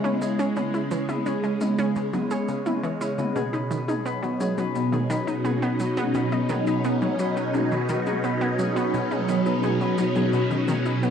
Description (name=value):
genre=ambient, sequencer-driven space music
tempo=86 BPM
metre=4/4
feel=straight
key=unclear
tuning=A4 = 440 Hz
part: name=phased string machine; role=sustained chords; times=0.0-11.1 s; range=B2 to E4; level=-24 LUFS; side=right 1 dB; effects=ensemble chorus, phaser, cassette tape
part: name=Celtic harp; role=arpeggios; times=0.0-11.1 s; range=B3 to C#5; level=-30 LUFS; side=left 5 dB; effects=auto-pan, cassette tape, tape echo
part: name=analog pluck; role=riff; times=0.0-11.1 s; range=B2 to G#4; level=-29 LUFS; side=right 1 dB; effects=chorus, cassette tape, tape echo
part: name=electronic toms and cabasa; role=percussion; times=0.0-11.1 s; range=none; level=-36 LUFS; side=left 1 dB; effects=cassette tape, tape echo
room=wet small room ambience, RT60 0.5 s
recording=home recording on cassette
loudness=-22 LUFS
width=side -8 dB against mid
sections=0.0-11.1 A section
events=none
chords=0.0 C#m7; 3.4 B6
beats=| 0.56 1.26 1.96 2.66 | 3.36 4.05 4.75 5.45 | 6.15 6.84 7.54 8.24 | 8.94 9.63 10.33 11.03